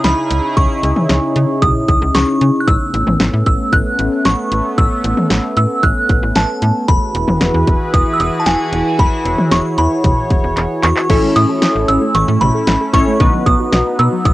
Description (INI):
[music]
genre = synth-pop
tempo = 114 BPM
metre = 4/4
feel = straight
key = unclear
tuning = A4 = 435 Hz
[part]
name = glassy synth bell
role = melody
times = 0.0-14.3 s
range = G#5 to F#6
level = -18 LUFS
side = right 1 dB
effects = chorus, cassette tape
[part]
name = sweeping resonant pad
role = sustained chords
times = 0.0-14.3 s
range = C#3 to C#5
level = -19 LUFS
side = equal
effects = chorus
[part]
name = slap-like FM bass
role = bass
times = 0.0-14.3 s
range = E1 to C#3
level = -17 LUFS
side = equal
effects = none
[part]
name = house drum kit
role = drums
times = 0.0-14.3 s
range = crash cymbal, handclaps, hi-hat, kick drum, snare drum, toms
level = -15 LUFS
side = equal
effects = cassette tape
[part]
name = funky polysynth comp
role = accompaniment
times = 11.1-14.1 s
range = B3 to C#5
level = -16 LUFS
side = left 1 dB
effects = chorus
[part]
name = soft round pluck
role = arpeggios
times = 11.1-14.3 s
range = D#3 to E5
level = -21 LUFS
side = equal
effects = chorus, phaser
[sound]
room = moderate booth ambience, RT60 0.2 s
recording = home recording on cassette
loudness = -12 LUFS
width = side -17 dB against mid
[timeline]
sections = 0.0-11.1 A section; 11.1-14.3 B section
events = drum fill 10.6-11.1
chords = 0.0 C#madd9; 2.7 Aadd9; 6.9 Eadd9; 11.1 A; 13.2 B